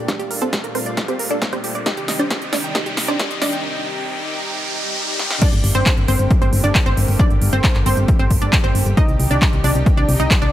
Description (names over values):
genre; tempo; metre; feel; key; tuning
uplifting trance; 135 BPM; 4/4; straight; G minor; A4 = 440 Hz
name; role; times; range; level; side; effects
wide unison pluck; melody; 0.0-10.5 s; C4 to Eb5; -23 LUFS; right 1 dB; sidechain pumping, tape echo
lush unison pad; sustained chords; 0.0-10.5 s; Bb2 to G4; -28 LUFS; left 1 dB; chorus, sidechain pumping
wide unison pluck; arpeggios; 0.0-3.6 s; G4 to Bb5; -28 LUFS; right 3 dB; sidechain pumping, tape echo
riser and swell; sound effects; 0.9-5.4 s; none; -26 LUFS; equal; none
big-room dance drum kit; drums; 0.1-10.5 s; crash cymbal, handclaps, hi-hat, snare drum; -23 LUFS; equal; overdrive, high-pass filter on snare, high-pass filter on hats, high-pass filter on cymbals, high-pass filter on room
electronic kick drum; drums; 0.1-10.4 s; none; -17 LUFS; equal; overdrive, high-pass filter on kick, high-pass filter on room
solid FM bass; bass; 5.5-10.5 s; G1 to C2; -18 LUFS; equal; sidechain pumping
room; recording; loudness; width
digital ambience; high-pass filter; -15 LUFS; side -13 dB against mid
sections
0.0-5.4 A section; 5.4-10.5 B section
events
build-up 0.0-5.4; drum fill 0.0-3.6, 5.2; filter sweep on synth pluck 0.0-5.4; filter sweep 0.0-5.4; riser 0.9-5.4; break 3.6-5.4; swell 4.5-5.4; drop 5.4-10.5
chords
0.0 Gmadd9; 1.9 Cm; 5.4 Gmadd9; 9.0 Cm